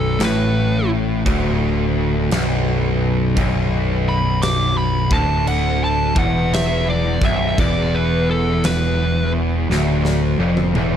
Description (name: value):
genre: stoner and doom metal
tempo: 57 BPM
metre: 4/4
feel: swing 65% on 8ths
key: B minor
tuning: A4 = 439 Hz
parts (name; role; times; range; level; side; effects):
- fuzz lead guitar; melody; 0.0-9.3 s; A4 to D6; -23 LUFS; right 1 dB; distortion, tape echo
- fuzz guitar; riff; 0.0-11.0 s; B1 to A2; -19 LUFS; equal; distortion
- growling picked electric bass; bass; 0.0-11.0 s; B0 to A1; -22 LUFS; equal; overdrive
- big rock drum kit; drums; 0.2-11.0 s; crash cymbal, kick drum, snare drum, toms; -25 LUFS; equal; none
room: small room reverb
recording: dark, warm production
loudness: -16 LUFS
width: side -9 dB against mid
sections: 0.0-11.0 A section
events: lead electric guitar solo 0.0-11.0; drum fill 9.7-11.0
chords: 0.0 Bm